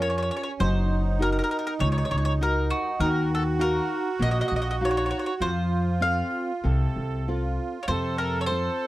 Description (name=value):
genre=italian folk, Italian serenade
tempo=99 BPM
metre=4/4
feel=rubato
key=unclear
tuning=A4 = 441 Hz
part: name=mandolin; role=melody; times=0.0-8.9 s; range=Gb4 to F5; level=-29 LUFS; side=equal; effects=none
part: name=accordion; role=second line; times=0.0-8.9 s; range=Db4 to A4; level=-31 LUFS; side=right 5 dB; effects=light tremolo tuning
part: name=nylon-string guitar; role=accompaniment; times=0.0-8.9 s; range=C3 to F5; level=-29 LUFS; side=left 2 dB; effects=none
part: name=upright bass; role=bass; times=0.0-8.7 s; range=Gb1 to F2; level=-26 LUFS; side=equal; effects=none
room=little or no reverb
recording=dry, close 1970s-style studio recording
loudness=-23 LUFS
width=side -16 dB against mid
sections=0.0-8.9 A section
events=none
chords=0.0 Bbm; 0.6 Gb6; 3.0 Ebmadd9; 5.4 F